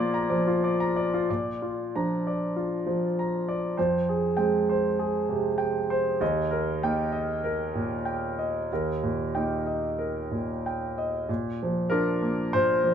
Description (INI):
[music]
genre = neoclassical minimalist piano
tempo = 96 BPM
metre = 4/4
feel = uneven beats, rubato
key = unclear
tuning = A4 = 440 Hz
[part]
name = clear concert grand piano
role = solo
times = 0.0-12.9 s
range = Eb2 to Bb5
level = -24 LUFS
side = equal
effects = none
[sound]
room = wet stone room reverb, RT60 0.9 s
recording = band playing live in one room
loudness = -25 LUFS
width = side -8 dB against mid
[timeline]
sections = 0.0-1.3 A section; 1.3-11.3 B section; 11.3-12.9 C section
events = none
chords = 0.0 Bb; 3.8 Fmadd9; 6.2 Eb; 11.3 Bb